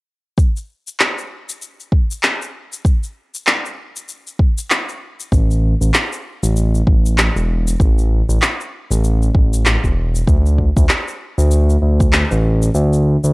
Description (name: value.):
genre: organic downtempo.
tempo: 97 BPM.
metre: 4/4.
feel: swing 59% on 16ths.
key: unclear.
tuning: A4 = 439 Hz.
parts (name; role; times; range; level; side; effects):
electronic kick drum; drums; 0.4-12.1 s; none; -14 LUFS; equal; none.
electronic shaker and handclaps; drums; 0.4-13.3 s; none; -18 LUFS; equal; overdrive.
smooth synth bass; bass; 5.3-13.3 s; E1 to D2; -14 LUFS; equal; none.
room: little or no reverb.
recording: dry, gritty hardware recording, cassette tape.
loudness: -14 LUFS.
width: side -24 dB against mid.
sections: 0.4-10.3 A section; 10.3-13.3 B section.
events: none.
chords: none.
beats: | 0.38 0.99 1.61 2.23 | 2.85 3.47 4.09 4.71 | 5.32 5.94 6.56 7.18 | 7.80 8.42 9.04 9.65 | 10.27 10.89 11.51 12.13 | 12.75.